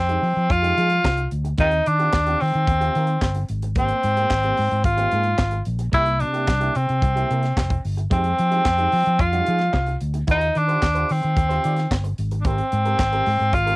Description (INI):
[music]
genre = disco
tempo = 110 BPM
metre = 4/4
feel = straight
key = F dorian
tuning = A4 = 441 Hz
[part]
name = breathy tenor saxophone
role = melody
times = 0.0-13.8 s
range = C4 to F4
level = -20 LUFS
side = equal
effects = cassette tape
[part]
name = fingered electric bass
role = bass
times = 0.0-13.7 s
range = F1 to F3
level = -22 LUFS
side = equal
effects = none
[part]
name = electric guitar at the edge of break-up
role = accompaniment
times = 0.1-13.8 s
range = Ab3 to D5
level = -32 LUFS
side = right 6 dB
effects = cassette tape
[part]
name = tight funk drum kit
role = drums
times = 0.1-13.8 s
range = handclaps, hi-hat, kick drum, snare drum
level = -23 LUFS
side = equal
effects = cassette tape
[sound]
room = light reverb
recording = home recording on cassette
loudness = -18 LUFS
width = side -22 dB against mid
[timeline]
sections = 0.0-13.8 A section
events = none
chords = 0.0 Fm9; 1.6 Eb69; 3.5 Abmaj9; 5.9 C7; 8.1 Fm9; 10.3 Eb69; 12.2 Abmaj9